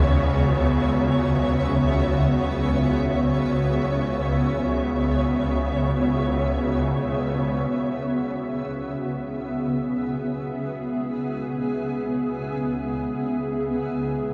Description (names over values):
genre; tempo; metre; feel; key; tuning
dark ambient drone; free time; none; none; C# minor; A4 = 441 Hz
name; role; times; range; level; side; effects
granular cloud pad; sustained chords; 0.0-14.3 s; C#3 to E5; -27 LUFS; equal; built-in reverb
gamelan-type bossed gongs; arpeggios; 0.0-8.7 s; D#2 to B3; -34 LUFS; equal; none
swarming drone; drone; 0.0-14.3 s; C#2 to C#3; -28 LUFS; equal; built-in reverb
flickering grainy texture; texture; 0.0-7.7 s; C#5; -33 LUFS; equal; built-in reverb
room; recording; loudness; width
wet huge ambient reverb, RT60 7.5 s; dark, warm production; -24 LUFS; mono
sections
0.0-7.7 A section; 7.7-14.3 B section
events
none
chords
0.0 C#madd9; 7.7 C#m